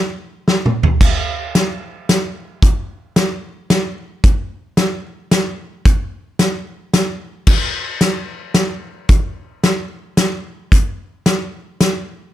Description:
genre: rock.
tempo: 111 BPM.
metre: 3/4.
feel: straight.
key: none.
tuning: none.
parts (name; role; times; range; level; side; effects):
loose indie drum kit; drums; 0.5-11.9 s; crash cymbal, hi-hat, kick drum, snare drum, toms; -14 LUFS; equal; none.
room: light reverb.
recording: none.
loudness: -15 LUFS.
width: side -13 dB against mid.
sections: 0.0-12.3 A section.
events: drum fill 0.5-1.0.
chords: none.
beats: 0.47 | 1.01 1.55 2.09 | 2.63 3.17 3.71 | 4.24 4.78 5.32 | 5.86 6.40 6.94 | 7.48 8.02 8.56 | 9.10 9.64 10.18 | 10.72 11.26 11.80.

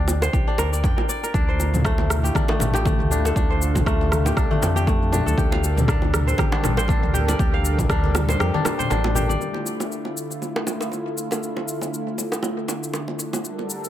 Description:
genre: afro house.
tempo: 119 BPM.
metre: 4/4.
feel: swing 56% on 16ths.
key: D minor.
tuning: A4 = 441 Hz.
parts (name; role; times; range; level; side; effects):
kora; arpeggios; 0.0-10.6 s; A3 to G5; -26 LUFS; left 2 dB; sidechain pumping, analog delay.
round analog bass; bass; 0.0-9.4 s; A1 to F2; -23 LUFS; equal; sidechain pumping.
deep house drum kit; drums; 0.1-13.9 s; rim click, shaker, toms; -28 LUFS; right 1 dB; tape echo.
bongos; percussion; 0.1-13.7 s; none; -30 LUFS; right 1 dB; tape echo.
electronic kick drum; drums; 0.3-8.0 s; none; -23 LUFS; equal; none.
warm analog pad; sustained chords; 1.3-13.9 s; D3 to Bb4; -29 LUFS; equal; chorus, sidechain pumping.
congas; percussion; 1.3-9.4 s; none; -28 LUFS; left 3 dB; tape echo.
room: light reverb, studio reverb.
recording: echo-heavy mix.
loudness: -19 LUFS.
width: side -12 dB against mid.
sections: 0.0-9.4 A section; 9.4-13.9 B section.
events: kick drops out 8.4-9.4.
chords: 0.0 Gm; 1.3 Dm7; 5.4 Gm; 9.4 Dm.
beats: 0.33 0.84 | 1.34 1.85 2.35 2.85 | 3.36 3.86 4.37 4.87 | 5.38 5.88 6.38 6.89 | 7.39 7.90 8.40 8.90 | 9.41 9.91 10.42 10.92 | 11.43 11.93 12.44 12.94 | 13.44.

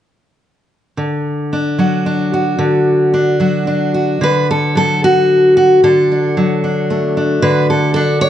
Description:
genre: folk, solo fingerstyle acoustic guitar.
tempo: 112 BPM.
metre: 3/4.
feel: rubato.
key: unclear.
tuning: A4 = 441 Hz.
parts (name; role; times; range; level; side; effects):
fingerpicked steel-string acoustic guitar; solo; 1.0-8.3 s; D3 to C#5; -11 LUFS; equal; none.
room: light reverb.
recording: nothing above 10.3 kHz.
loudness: -11 LUFS.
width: side -11 dB against mid.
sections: 1.0-4.2 A section; 4.2-8.3 B section.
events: none.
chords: 1.0 D.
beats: | 0.96 1.51 2.05 | 2.58 3.12 3.67 | 4.21 4.76 5.30 | 5.83 6.37 6.90 | 7.43 7.96.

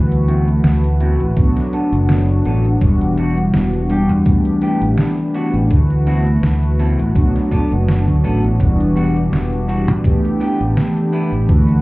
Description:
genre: vaporwave.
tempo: 83 BPM.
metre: 4/4.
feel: swing 54% on 16ths.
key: E minor.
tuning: A4 = 440 Hz.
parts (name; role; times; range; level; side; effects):
mellow synth brass; accompaniment; 0.0-11.8 s; E3 to B4; -18 LUFS; equal; analog chorus, cassette tape, analog delay.
warbly tape-like pad; sustained chords; 0.0-11.8 s; G3 to D6; -29 LUFS; equal; chorus, built-in reverb.
modern bright fingered electric bass; bass; 0.0-11.8 s; E1 to E2; -16 LUFS; equal; none.
detuned 8-bit digital drum machine; drums; 0.1-11.8 s; hi-hat, snare drum; -18 LUFS; equal; overdrive, studio reverb.
clean electric guitar; riff; 0.3-11.3 s; G3 to A4; -26 LUFS; equal; wide subtle chorus, low-pass filter, analog delay.
electronic kick drum; drums; 1.4-11.6 s; none; -15 LUFS; equal; overdrive, studio reverb.
room: light reverb.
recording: heard muffled through a wall, club reverb, cassette tape, EQ.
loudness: -13 LUFS.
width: side -20 dB against mid.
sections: 0.0-11.8 A section.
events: filter sweep on clean electric guitar 0.0-11.8.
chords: 0.0 D13; 1.4 Bm7; 2.8 Em9; 4.3 A9sus4; 5.7 D13; 7.2 Bm7; 8.6 Em9; 10.0 A9sus4.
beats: 0.65 1.37 2.09 | 2.81 3.54 4.26 4.98 | 5.71 6.43 7.15 7.88 | 8.60 9.32 10.04 10.77 | 11.49.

